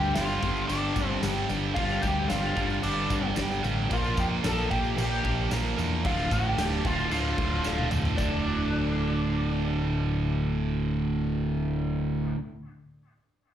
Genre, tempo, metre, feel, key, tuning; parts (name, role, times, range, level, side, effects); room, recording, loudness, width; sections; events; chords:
classic rock; 112 BPM; 4/4; straight; D minor; A4 = 440 Hz
lead guitar through a small cranked amp; melody; 0.0-12.3 s; D4 to A4; -32 LUFS; left 2 dB; wah, overdrive, plate reverb, slapback echo
picked steel-string acoustic guitar; accompaniment; 0.0-12.4 s; G2 to Bb4; -39 LUFS; left 3 dB
cranked stack guitar; riff; 0.0-12.4 s; D2 to Bb3; -30 LUFS; right 8 dB; overdrive, slapback echo
overdriven electric guitar; riff; 0.0-12.4 s; D2 to Bb3; -32 LUFS; left 5 dB; slapback echo
growling picked electric bass; bass; 0.0-12.3 s; D1 to F2; -31 LUFS; equal; overdrive
big rock drum kit; drums; 0.2-8.3 s; crash cymbal, kick drum, snare drum, toms; -33 LUFS; equal
tambourine; percussion; 0.2-8.4 s; -46 LUFS; left 3 dB
light reverb; live gig heard through the venue's PA, club reverb; -25 LUFS; side -10 dB against mid
0.0-8.2 A section; 8.2-12.5 B section
drum fill 7.6-8.2
0.0 Gsus4; 3.9 Bb; 6.0 Dm; 8.2 D